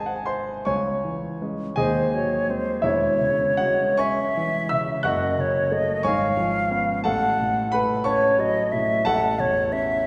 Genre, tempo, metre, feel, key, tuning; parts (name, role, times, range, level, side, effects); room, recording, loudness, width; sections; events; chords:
classical, romantic duo for flute and grand piano; 46-61 BPM (dotted quarters); 6/8; rubato; C# minor; A4 = 440 Hz
warm grand piano; accompaniment; 0.0-10.1 s; E1 to F#6; -26 LUFS; equal
hollow concert flute; melody; 1.8-10.1 s; B#4 to F#5; -25 LUFS; equal
wet concert hall reverb, RT60 2.1 s; heard from further back in the room; -23 LUFS; mono
0.7-10.1 A section
0.0 G#; 0.7 C#m; 1.8 G#7/D#; 2.8 C#m/E; 5.0 F#m; 6.0 C#7/G#; 7.1 F#m/A; 9.1 F#m7/A